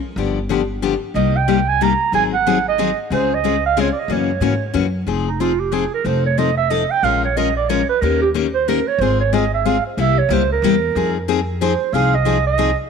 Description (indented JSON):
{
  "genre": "acoustic string swing (jazz manouche)",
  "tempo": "184 BPM",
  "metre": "3/4",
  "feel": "swing 61% on 8ths",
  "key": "F minor",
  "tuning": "A4 = 441 Hz",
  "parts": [
    { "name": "picked steel-string acoustic guitar", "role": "accompaniment", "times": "0.2-12.7 s", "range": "C3 to Bb4", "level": "-20 LUFS", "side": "left 11 dB", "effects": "none" },
    { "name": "upright bass", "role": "bass", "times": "0.2-12.7 s", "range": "F1 to Ab2", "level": "-22 LUFS", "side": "equal", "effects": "none" },
    { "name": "mellow clarinet", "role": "melody", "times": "1.2-12.8 s", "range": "Eb4 to Bb5", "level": "-18 LUFS", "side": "right 9 dB", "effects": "none" }
  ],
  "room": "moderate echo chamber reverb, RT60 2.2 s",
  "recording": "1960s-style stereo with parts hard left and right",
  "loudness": "-15 LUFS",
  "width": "side -6 dB against mid",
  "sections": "0.0-5.1 A section; 5.1-12.9 B section",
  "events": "clarinet solo 5.1-12.9",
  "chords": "0.2 G7; 1.2 Cm7; 2.1 Ab7; 3.1 Dbmaj7; 4.1 Gb9; 5.1 Fm7; 6.1 F7; 7.0 Bbm7; 8.0 Eb7; 9.0 Ab6; 10.0 C7; 11.0 Fm7"
}